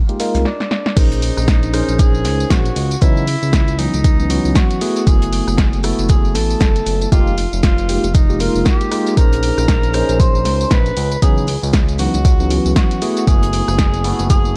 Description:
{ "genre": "deep house", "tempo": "117 BPM", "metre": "4/4", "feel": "swing 58% on 16ths", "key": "unclear", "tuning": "A4 = 440 Hz", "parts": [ { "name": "bright tine electric piano", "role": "stabs", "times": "0.1-14.6 s", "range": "Fb3 to C5", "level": "-23 LUFS", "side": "equal", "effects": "phaser, sidechain pumping, delay" }, { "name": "punchy analog drum machine", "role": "drums", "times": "0.1-14.5 s", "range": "crash cymbal, hi-hat, rim click, snare drum, tambourine", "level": "-26 LUFS", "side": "equal", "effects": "none" }, { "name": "cloth-damped thuddy drum kit", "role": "drums", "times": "0.2-14.4 s", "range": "hi-hat, shaker, snare drum", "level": "-37 LUFS", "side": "equal", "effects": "none" }, { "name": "smooth synth bass", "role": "bass", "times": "0.3-14.6 s", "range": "F1 to Db2", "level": "-22 LUFS", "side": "equal", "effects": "sidechain pumping" }, { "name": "breathy tenor saxophone", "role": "melody", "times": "0.5-14.6 s", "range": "D4 to C5", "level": "-25 LUFS", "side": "equal", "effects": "vintage 12-bit sampler grit, delay" }, { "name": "electronic kick drum", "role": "drums", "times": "1.0-14.4 s", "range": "none", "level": "-16 LUFS", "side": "equal", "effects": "none" } ], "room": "small room ambience", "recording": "dark, warm production", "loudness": "-15 LUFS", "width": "mono", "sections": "1.0-14.6 A section", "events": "drum fill 0.5-1.0; drop 1.0-14.6", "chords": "0.0 Fm11; 1.0 Bbm11; 2.8 Dbm11; 4.8 Gbm11; 7.1 Fm11; 9.2 Bbm11; 11.0 Dbm11; 13.0 Gbm11" }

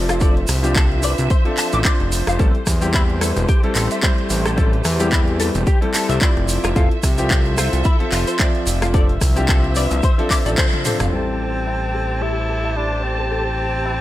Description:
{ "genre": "nu-disco, nu disco", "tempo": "110 BPM", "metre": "4/4", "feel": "swing 56% on 16ths", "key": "A minor", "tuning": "A4 = 440 Hz", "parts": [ { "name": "warm grand piano", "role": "accompaniment", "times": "0.0-14.0 s", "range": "F3 to E5", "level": "-24 LUFS", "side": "left 1 dB", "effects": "sidechain pumping, low-pass filter, tape echo" }, { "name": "dark studio string section", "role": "sustained chords", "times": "0.0-14.0 s", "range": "F3 to A5", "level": "-28 LUFS", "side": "right 1 dB", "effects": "sidechain pumping" }, { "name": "fat analog bass", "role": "bass", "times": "0.0-14.0 s", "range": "E1 to E2", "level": "-21 LUFS", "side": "equal", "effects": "sidechain pumping" }, { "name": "direct-recorded clean electric guitar", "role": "riff", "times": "0.1-13.9 s", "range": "C4 to D6", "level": "-27 LUFS", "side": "left 3 dB", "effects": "ensemble chorus, low-pass filter, tape echo" }, { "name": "house drum kit", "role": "drums", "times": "0.1-11.1 s", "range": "handclaps, hi-hat, rim click, toms", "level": "-24 LUFS", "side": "equal", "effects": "none" }, { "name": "tube shaker", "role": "percussion", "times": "0.1-11.1 s", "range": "none", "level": "-30 LUFS", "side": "right 4 dB", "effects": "none" }, { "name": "electronic kick drum", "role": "drums", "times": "0.2-10.7 s", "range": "none", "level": "-17 LUFS", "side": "equal", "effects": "none" }, { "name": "clear tenor saxophone", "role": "melody", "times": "11.1-14.0 s", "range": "C4 to E4", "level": "-24 LUFS", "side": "equal", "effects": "vintage 12-bit sampler grit, analog delay" } ], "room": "studio ambience", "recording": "none", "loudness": "-16 LUFS", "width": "side -14 dB against mid", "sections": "0.0-11.1 A section; 11.1-14.0 B section", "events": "drum fill 10.6-11.1; band accent 10.6; filter sweep on clean electric guitar 11.1-14.0; filter sweep on grand piano 11.1-14.0", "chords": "0.2 Dm7/F; 2.4 Am7; 6.5 Fmaj7; 8.9 Dm7/F; 11.1 Am7" }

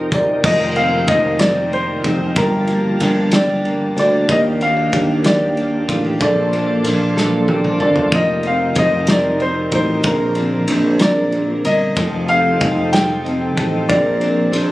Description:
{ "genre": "six-eight pop ballad", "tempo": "62 BPM (dotted quarters)", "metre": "6/8", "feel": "straight", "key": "Bb major", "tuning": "A4 = 440 Hz", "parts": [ { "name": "warm grand piano", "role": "melody", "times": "0.0-14.7 s", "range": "Bb4 to G5", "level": "-19 LUFS", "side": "equal", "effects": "digital delay" }, { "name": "fingerpicked plugged-in steel-string acoustic guitar", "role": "accompaniment", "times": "0.0-14.7 s", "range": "G2 to Bb4", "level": "-23 LUFS", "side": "right 1 dB", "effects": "double-tracked left and right" }, { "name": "tonewheel organ", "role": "sustained chords", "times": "0.0-14.7 s", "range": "D3 to A5", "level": "-25 LUFS", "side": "equal", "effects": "chorus vibrato, slow rotary speaker" }, { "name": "sustaining fretless electric bass", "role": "bass", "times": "0.0-14.7 s", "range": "F1 to Eb2", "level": "-20 LUFS", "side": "equal", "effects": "none" }, { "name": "loose indie drum kit", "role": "drums", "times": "0.1-14.7 s", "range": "crash cymbal, hi-hat, kick drum, ride cymbal, snare drum, splash cymbal, toms", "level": "-22 LUFS", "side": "equal", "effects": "none" }, { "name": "direct-recorded clean electric guitar", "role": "arpeggios", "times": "0.4-14.7 s", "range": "Eb3 to Bb4", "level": "-25 LUFS", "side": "left 1 dB", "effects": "digital delay" } ], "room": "small room ambience", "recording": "recorded on a phone in the room, club ambience, compression", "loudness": "-14 LUFS", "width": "side -17 dB against mid", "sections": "0.4-14.7 A section", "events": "drum fill 7.2-8.1", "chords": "0.4 F7sus4; 2.4 Gm7; 4.3 Ebmaj7; 6.2 Bbmaj7; 8.1 F7sus4; 10.0 Bbadd9; 12.0 F7; 13.9 Bbadd9" }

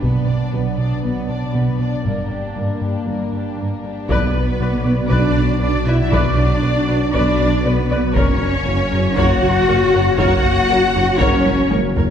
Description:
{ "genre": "cinematic, hybrid orchestral and electronic film score", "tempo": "118 BPM", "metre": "4/4", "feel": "straight", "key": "B harmonic minor", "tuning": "A4 = 442 Hz", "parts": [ { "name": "warm symphonic violin section", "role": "second line", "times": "0.0-11.7 s", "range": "Bb3 to F#5", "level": "-27 LUFS", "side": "left 4 dB", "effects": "none" }, { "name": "hollow soft pad", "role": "sustained chords", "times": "0.0-12.1 s", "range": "F#3 to D5", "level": "-25 LUFS", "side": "left 1 dB", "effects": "chorus" }, { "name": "smooth synth bass", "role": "riff", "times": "0.0-12.1 s", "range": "F#2 to B3", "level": "-22 LUFS", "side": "equal", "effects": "none" }, { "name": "warm symphonic cello section", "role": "bass", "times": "0.0-11.7 s", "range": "G2 to F#4", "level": "-22 LUFS", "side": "right 1 dB", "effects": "none" }, { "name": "warm symphonic double bass section", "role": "bass", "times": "0.0-12.0 s", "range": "F#1 to B1", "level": "-26 LUFS", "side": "right 4 dB", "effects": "none" }, { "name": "taiko ensemble", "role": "drums", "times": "0.0-1.0, 4.1-12.1 s", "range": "none", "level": "-22 LUFS", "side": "left 1 dB", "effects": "none" }, { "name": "rich symphonic violin section", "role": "melody", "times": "4.1-11.7 s", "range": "B4 to F#5", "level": "-27 LUFS", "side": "left 4 dB", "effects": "none" }, { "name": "warm studio viola section", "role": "accompaniment", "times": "4.1-12.1 s", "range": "A#4 to D5", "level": "-24 LUFS", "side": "left 1 dB", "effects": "none" }, { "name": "warm French horn section", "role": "sustained chords", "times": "4.1-11.7 s", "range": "B3 to F#4", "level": "-24 LUFS", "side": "left 4 dB", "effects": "none" }, { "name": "dark detuned saw bass", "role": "bass", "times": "4.1-12.1 s", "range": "F#1 to B1", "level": "-25 LUFS", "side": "equal", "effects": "none" }, { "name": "mellow tuba", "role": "bass", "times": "4.1-12.1 s", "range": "F#1 to B1", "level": "-25 LUFS", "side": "right 2 dB", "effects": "none" } ], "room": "wet scoring stage reverb, RT60 1.7 s", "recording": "heard from further back in the room", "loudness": "-15 LUFS", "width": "side -8 dB against mid", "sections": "0.0-4.1 A section; 4.1-12.1 B section", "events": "build-up 0.0-4.1; drum fill 11.5-12.1", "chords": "0.0 Bm; 2.1 Gm; 4.1 Bm; 8.2 F#" }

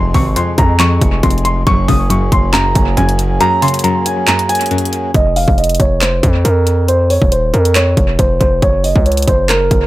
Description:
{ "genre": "hip hop, trap", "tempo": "138 BPM", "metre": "4/4", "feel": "half-time", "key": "F phrygian", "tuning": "A4 = 439 Hz", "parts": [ { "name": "dark concert grand piano", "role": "melody", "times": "0.0-9.9 s", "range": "Bb4 to Eb6", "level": "-16 LUFS", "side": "right 1 dB", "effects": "low-pass filter, analog delay" }, { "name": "string-like resonator pluck", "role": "accompaniment", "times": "0.0-5.1 s", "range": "F2 to Db3", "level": "-18 LUFS", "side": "left 1 dB", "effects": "chorus, low-pass filter, analog delay" }, { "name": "pedal harmonium", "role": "sustained chords", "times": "0.0-5.1 s", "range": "F3 to Ab4", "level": "-22 LUFS", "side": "right 2 dB", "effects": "none" }, { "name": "distorted 808-style bass", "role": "bass", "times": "0.0-9.9 s", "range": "Eb1 to F2", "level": "-15 LUFS", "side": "equal", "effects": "distortion" }, { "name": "trap drum kit", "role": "drums", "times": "0.1-9.8 s", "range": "handclaps, hi-hat, kick drum", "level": "-15 LUFS", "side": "equal", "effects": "overdrive" } ], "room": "digital ambience", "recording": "echo-heavy mix", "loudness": "-10 LUFS", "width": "side -16 dB against mid", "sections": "0.0-5.1 A section; 5.1-9.9 B section", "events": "kick muted 3.4-5.1", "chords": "0.0 Fm; 1.7 Gbadd9; 5.1 F5; 8.6 Gb" }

